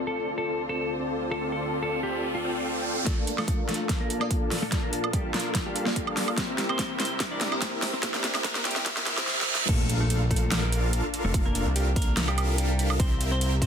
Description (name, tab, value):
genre	future bass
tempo	145 BPM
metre	4/4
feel	half-time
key	unclear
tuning	A4 = 440 Hz
part	glassy digital keys	accompaniment	0.0-9.7 s	Bb3 to A5	-36 LUFS	left 2 dB	chorus, sidechain pumping, tape echo
part	dark studio string section	sustained chords	0.0-13.7 s	D2 to A5	-40 LUFS	left 1 dB	sidechain pumping, low-pass filter
part	supersaw chords	riff	0.0-13.7 s	C4 to A5	-32 LUFS	equal	sidechain pumping, low-pass filter
part	riser, reverse cymbal and impact	sound effects	1.2-11.3 s	none	-35 LUFS	right 2 dB	none
part	clean electric guitar	melody	0.1-13.7 s	E3 to D5	-33 LUFS	left 1 dB	sidechain pumping, ping-pong delay
part	big-room dance drum kit	drums	3.1-13.7 s	crash cymbal, hi-hat, snare drum, woodblock	-29 LUFS	right 1 dB	overdrive
part	electronic kick drum	drums	3.1-13.7 s	none	-28 LUFS	equal	overdrive
part	fat analog bass	bass	9.7-13.7 s	F1 to C2	-26 LUFS	equal	sidechain pumping
room	light reverb, digital ambience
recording	dense, heavily limited modern master, high-pass filter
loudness	-24 LUFS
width	side -7 dB against mid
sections	0.0-3.1 A section; 3.1-9.7 B section; 9.7-13.7 C section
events	riser 1.2-3.1, 3.1-9.7; build-up 3.1-9.7; drum fill 3.1-9.3, 9.3-9.7; filter sweep on supersaw synth 3.1-9.7; filter sweep on string section 3.1-9.7; filter sweep 3.1-9.7; reverse cymbal 8.9-9.7; drop 9.7-13.7; impact 9.7-11.3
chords	0.0 Dm7; 3.1 Bbmaj7; 6.4 C7; 9.7 Bbmaj7; 13.0 C7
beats	0.17 0.58 1.00 | 1.41 1.82 2.24 2.65 | 3.07 3.48 3.89 4.31 | 4.72 5.14 5.55 5.96 | 6.38 6.79 7.21 7.62 | 8.03 8.45 8.86 9.27 | 9.69 10.10 10.52 10.93 | 11.34 11.76 12.17 12.58 | 13.00 13.41